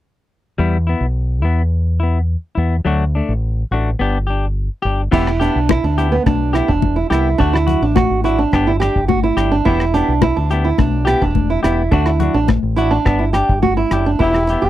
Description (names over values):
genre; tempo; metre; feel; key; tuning
highlife guitar band; 106 BPM; 4/4; straight; E minor; A4 = 440 Hz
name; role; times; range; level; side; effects
clean electric guitar; accompaniment; 0.6-14.7 s; E3 to G4; -20 LUFS; left 5 dB; none
deep dub fingered electric bass; bass; 0.6-14.7 s; E1 to E2; -18 LUFS; equal; none
nylon-string guitar; arpeggios; 5.1-14.7 s; B3 to G4; -17 LUFS; right 5 dB; slapback echo
cloth-damped thuddy drum kit; drums; 5.1-14.6 s; crash cymbal, hi-hat, kick drum, rim click; -19 LUFS; equal; none
congas; percussion; 5.1-13.8 s; none; -21 LUFS; left 12 dB; none
trumpet with bucket mute; melody; 14.2-14.7 s; E4 to G4; -16 LUFS; equal; none
room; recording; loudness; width
little or no reverb; dry, close 1970s-style studio recording; -14 LUFS; side -13 dB against mid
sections
0.6-5.1 A section; 5.1-14.2 B section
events
none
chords
0.6 E5; 2.9 D; 4.0 G; 5.1 Em; 7.4 D; 8.5 G; 9.7 Em; 11.9 D; 13.1 G